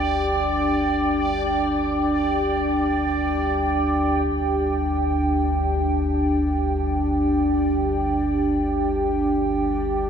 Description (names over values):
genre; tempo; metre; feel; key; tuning
dark ambient drone; free time; none; none; unclear; A4 = 441 Hz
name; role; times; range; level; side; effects
dark analog pad; sustained chords; 0.0-10.1 s; D4 to G5; -21 LUFS; right 1 dB; chorus
deep rumbling drone; drone; 0.0-10.1 s; G1 to D2; -27 LUFS; left 1 dB; built-in reverb, lush chorus
bubbling stepped-filter texture; texture; 0.0-10.1 s; D5; -30 LUFS; equal; chorus, built-in reverb
taiko ensemble; percussion; 4.3-4.5 s; none; -40 LUFS; right 3 dB; none
room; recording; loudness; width
wet huge ambient reverb, RT60 8.3 s; none; -20 LUFS; side -7 dB against mid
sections
0.0-4.3 A section; 4.3-10.1 B section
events
none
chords
0.0 G5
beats
free time